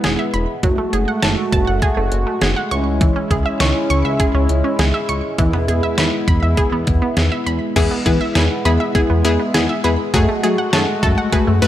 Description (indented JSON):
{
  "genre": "synth-pop",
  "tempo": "101 BPM",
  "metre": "4/4",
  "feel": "straight",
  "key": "unclear",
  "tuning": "A4 = 439 Hz",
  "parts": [
    { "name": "chorused pulse-width pad", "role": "sustained chords", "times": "0.0-11.7 s", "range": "G#3 to F#4", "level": "-21 LUFS", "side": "equal", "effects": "none" },
    { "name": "wide unison pluck", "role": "arpeggios", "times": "0.0-11.5 s", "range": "E3 to C#6", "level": "-23 LUFS", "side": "right 2 dB", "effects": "slapback echo" },
    { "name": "chorused synth bass", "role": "bass", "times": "0.0-11.7 s", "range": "E1 to F#3", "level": "-19 LUFS", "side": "equal", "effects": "none" },
    { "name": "detuned 8-bit digital drum machine", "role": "drums", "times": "0.0-11.7 s", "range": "crash cymbal, hi-hat, kick drum, snare drum, toms", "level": "-20 LUFS", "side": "equal", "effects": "none" },
    { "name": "analog pluck", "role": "accompaniment", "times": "7.8-11.7 s", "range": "A3 to B4", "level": "-19 LUFS", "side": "left 3 dB", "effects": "chorus" }
  ],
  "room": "light reverb",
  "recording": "none",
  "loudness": "-14 LUFS",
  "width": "side -12 dB against mid",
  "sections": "0.0-7.8 A section; 7.8-11.7 B section",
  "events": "none",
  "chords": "0.0 E; 0.6 F#madd9; 2.7 C#m; 5.4 E; 10.1 F#madd9"
}